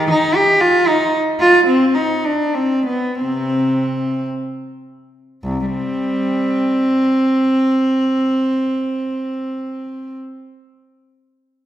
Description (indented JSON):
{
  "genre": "classical, baroque-style suite movement for unaccompanied cello",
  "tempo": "48-79 BPM (dotted quarters)",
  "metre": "6/8",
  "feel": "rubato",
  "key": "C minor",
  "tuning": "A4 = 444 Hz",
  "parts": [
    { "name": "rich cello", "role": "solo", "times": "0.0-10.1 s", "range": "C2 to G4", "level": "-15 LUFS", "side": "equal", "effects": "none" }
  ],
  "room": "wet concert hall reverb, RT60 1.9 s",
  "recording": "heard from further back in the room",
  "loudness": "-15 LUFS",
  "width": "side -12 dB against mid",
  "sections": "0.0-5.4 A section; 5.4-9.8 B section",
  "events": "slowing down 0.6-5.4",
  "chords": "none"
}